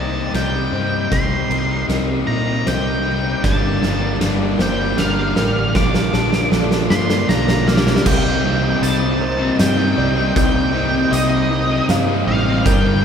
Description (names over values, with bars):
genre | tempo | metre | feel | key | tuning
post-rock | 78 BPM | 3/4 | straight | unclear | A4 = 440 Hz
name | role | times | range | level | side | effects
octave-fuzz lead guitar | melody | 0.0-13.0 s | Eb5 to D6 | -23 LUFS | right 1 dB | distortion
clear studio string section | sustained chords | 0.0-13.0 s | Bb3 to G5 | -33 LUFS | left 1 dB | none
felt-muted upright piano | arpeggios | 0.0-13.0 s | A4 to F5 | -30 LUFS | right 1 dB | none
twelve-string electric guitar | arpeggios | 0.0-13.0 s | G2 to Bb4 | -26 LUFS | left 2 dB | none
overdriven electric guitar | riff | 0.0-13.0 s | G2 to Eb4 | -22 LUFS | left 4 dB | none
fingered electric bass | bass | 0.0-13.0 s | G1 to Bb2 | -22 LUFS | equal | none
oversized low-tuned drum kit | drums | 0.3-12.8 s | crash cymbal, hi-hat, kick drum, ride cymbal, snare drum | -21 LUFS | right 1 dB | none
overdriven semi-hollow guitar | riff | 3.4-13.0 s | G2 to Eb4 | -23 LUFS | right 4 dB | none
room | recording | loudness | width
wet church reverb, RT60 2.7 s | recorded in a church or concert hall | -15 LUFS | side -7 dB against mid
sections
0.0-8.1 A section; 8.1-13.0 B section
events
build-up 0.0-8.1; drum fill 0.0-8.1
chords
0.0 Cm7; 3.4 Gm7; 5.7 Bbmaj7; 8.1 Cm7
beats
0.34 | 1.11 1.89 2.66 | 3.43 4.21 4.98 | 5.75 6.52 7.29 | 8.06 8.82 9.59 | 10.36 11.12 11.89 | 12.66